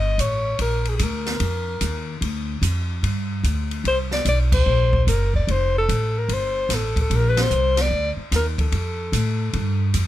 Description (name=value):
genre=jazz, small-group swing and bop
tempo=147 BPM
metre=4/4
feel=swing 66% on 8ths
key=unclear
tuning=A4 = 442 Hz
part: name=dark alto saxophone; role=melody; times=0.0-9.9 s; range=Ab4 to Eb5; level=-24 LUFS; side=left 2 dB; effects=plate reverb
part: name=upright bass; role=bass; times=0.0-10.1 s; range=F1 to A2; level=-22 LUFS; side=equal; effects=none
part: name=open jazz drum kit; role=drums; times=0.2-10.1 s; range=crash cymbal, hi-hat, kick drum, ride cymbal, snare drum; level=-27 LUFS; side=equal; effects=none
room=light reverb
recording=none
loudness=-19 LUFS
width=side -14 dB against mid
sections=0.0-10.1 A section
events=band accent 4.4, 7.3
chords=0.0 Em6 (rootless); 0.6 Bb; 2.2 Dm; 3.0 G5; 3.8 Daug7; 5.5 F; 7.1 Bb; 8.7 F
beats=0.17 | 0.58 0.99 1.40 1.80 | 2.21 2.62 3.02 3.43 | 3.84 4.25 4.65 5.06 | 5.47 5.87 6.28 6.69 | 7.09 7.50 7.91 8.31 | 8.72 9.13 9.54 9.94